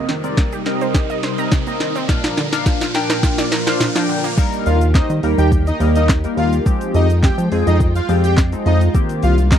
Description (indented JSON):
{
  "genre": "dance-pop",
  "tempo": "105 BPM",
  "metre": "4/4",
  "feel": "straight",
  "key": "Eb major",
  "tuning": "A4 = 440 Hz",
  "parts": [
    { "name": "chorused polysynth", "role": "accompaniment", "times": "0.0-9.6 s", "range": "Eb3 to G5", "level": "-22 LUFS", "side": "left 1 dB", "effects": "sidechain pumping, low-pass filter" },
    { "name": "soft string machine", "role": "sustained chords", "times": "0.0-9.6 s", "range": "Bb2 to G5", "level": "-25 LUFS", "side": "equal", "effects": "phaser, ensemble chorus, sidechain pumping, low-pass filter" },
    { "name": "wide unison pluck", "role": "arpeggios", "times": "0.0-4.3 s", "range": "Bb2 to Bb5", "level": "-25 LUFS", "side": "right 4 dB", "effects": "sidechain pumping, low-pass filter, slapback echo" },
    { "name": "riser", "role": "sound effects", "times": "0.0-4.4 s", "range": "none", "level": "-28 LUFS", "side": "equal", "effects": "none" },
    { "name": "smooth R&B drum kit", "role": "drums", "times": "0.1-9.6 s", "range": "crash cymbal, handclaps, hi-hat, kick drum, shaker, snare drum", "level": "-17 LUFS", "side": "equal", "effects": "overdrive" },
    { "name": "egg shaker", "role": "percussion", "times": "0.2-9.6 s", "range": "none", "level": "-44 LUFS", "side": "left 19 dB", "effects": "none" },
    { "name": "soft supersaw", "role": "melody", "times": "4.7-9.6 s", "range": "Eb4 to G5", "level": "-22 LUFS", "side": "equal", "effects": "slapback echo" },
    { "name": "chorused synth bass", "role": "bass", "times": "4.7-9.6 s", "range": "C2 to F3", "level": "-15 LUFS", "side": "equal", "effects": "sidechain pumping" }
  ],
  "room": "little or no reverb",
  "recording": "dry, close 1970s-style studio recording",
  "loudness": "-14 LUFS",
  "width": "side -9 dB against mid",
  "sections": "0.0-4.4 A section; 4.4-9.6 B section",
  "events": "build-up 0.0-4.4; drum fill 0.0-4.4; riser 0.0-4.4; filter sweep 0.0-4.4; drop 4.4-9.6",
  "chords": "0.0 Cm7; 2.1 Bb; 4.4 Eb; 6.7 Fmadd9; 8.9 Cm7"
}